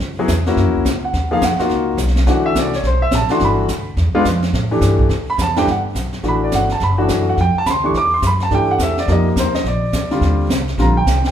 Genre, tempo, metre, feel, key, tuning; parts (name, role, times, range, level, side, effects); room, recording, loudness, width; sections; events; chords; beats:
jazz, small-group swing and bop; 212 BPM; 4/4; swing 62% on 8ths; G major; A4 = 442 Hz
upright bass; bass; 0.0-11.3 s; F#1 to A2; -18 LUFS; equal
jazz brush drum kit; drums; 0.0-11.3 s; brushed snare drum, hi-hat, kick drum, snare drum; -23 LUFS; right 1 dB
warm concert grand piano; accompaniment; 0.2-11.3 s; G2 to D6; -17 LUFS; equal
moderate large studio reverb, RT60 1.2 s; band playing live in one room; -14 LUFS; side -9 dB against mid
0.0-5.7 A section; 5.7-11.3 A section
0.0 C#m7; 0.6 F#7; 1.1 Bmaj9#11; 2.3 D7; 3.4 G69; 4.0 E7b9; 4.5 A5; 5.1 Dsus2; 5.7 Gmaj7; 6.8 D69/F#; 7.4 Fadd9; 7.9 Em9; 9.1 Eb69; 9.6 Bb; 10.2 Ebmaj7
| 0.01 0.29 0.57 0.85 | 1.14 1.42 1.70 1.99 | 2.27 2.55 2.84 3.12 | 3.40 3.69 3.97 4.25 | 4.54 4.82 5.10 5.39 | 5.67 5.96 6.24 6.52 | 6.81 7.09 7.38 7.66 | 7.94 8.23 8.51 8.79 | 9.08 9.36 9.65 9.93 | 10.21 10.50 10.78 11.06